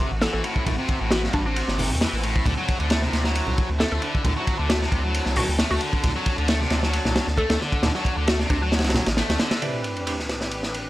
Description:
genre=breakbeat, breaks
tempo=134 BPM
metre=4/4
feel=swing 54% on 16ths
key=D mixolydian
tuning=A4 = 440 Hz
part: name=clear studio string section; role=sustained chords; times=0.0-10.9 s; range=A2 to A5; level=-33 LUFS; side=left 1 dB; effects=sidechain pumping
part: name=distorted electric guitar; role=riff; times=0.0-9.6 s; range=G2 to A3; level=-27 LUFS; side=equal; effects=overdrive, tape echo
part: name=saturated sub bass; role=bass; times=0.0-9.4 s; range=G1 to E2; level=-26 LUFS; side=equal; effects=none
part: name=crunchy breakbeat drum kit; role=drums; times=0.0-10.9 s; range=hi-hat, kick drum, ride cymbal, snare drum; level=-24 LUFS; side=equal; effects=high-pass filter on kick, high-pass filter on cymbals, high-pass filter on hats, high-pass filter on snare, high-pass filter on room
part: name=hollow square pluck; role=melody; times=0.2-8.7 s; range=D4 to A4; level=-28 LUFS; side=equal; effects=chorus, AM radio sound, cassette tape, tape echo
part: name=congas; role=percussion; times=0.7-9.0 s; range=none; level=-33 LUFS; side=right 2 dB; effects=none
part: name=band-passed chord stab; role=stabs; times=9.6-10.2 s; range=A2 to B4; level=-30 LUFS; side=right 2 dB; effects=phaser, tape echo
part: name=sub drop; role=sound effects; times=9.6-10.9 s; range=none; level=-34 LUFS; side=equal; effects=none
room=little or no reverb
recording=dry, gritty hardware recording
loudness=-20 LUFS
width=side -16 dB against mid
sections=0.0-9.6 A section; 9.6-10.9 B section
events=impact 9.6-10.9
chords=0.0 Am7; 2.5 Dsus2; 9.6 Am11

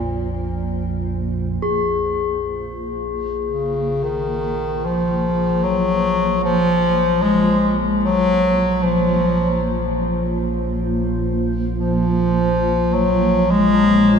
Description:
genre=dark ambient drone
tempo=50 BPM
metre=4/4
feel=straight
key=unclear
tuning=A4 = 439 Hz
part: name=warm bass clarinet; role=melody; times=0.0-14.2 s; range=Bb2 to Ab3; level=-17 LUFS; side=left 1 dB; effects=tape echo
part: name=granular cloud pad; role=sustained chords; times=0.0-14.2 s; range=Bb3 to C5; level=-27 LUFS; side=right 2 dB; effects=built-in reverb
part: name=deep rumbling drone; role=drone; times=0.0-14.2 s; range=Bb1 to F2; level=-26 LUFS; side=right 1 dB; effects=built-in reverb, lush chorus
part: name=bronze singing bowl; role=texture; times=1.6-14.2 s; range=Ab4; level=-26 LUFS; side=left 5 dB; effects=none
room=wet cathedral reverb, RT60 6.2 s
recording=small room ambience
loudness=-17 LUFS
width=side -6 dB against mid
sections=0.0-1.6 A section; 1.6-14.2 B section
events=fade-in on ambient pad 1.6-14.2; fade-out on singing bowl 1.6-14.2; filter sweep on synth drone 1.6-14.2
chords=0.0 Bbsus2

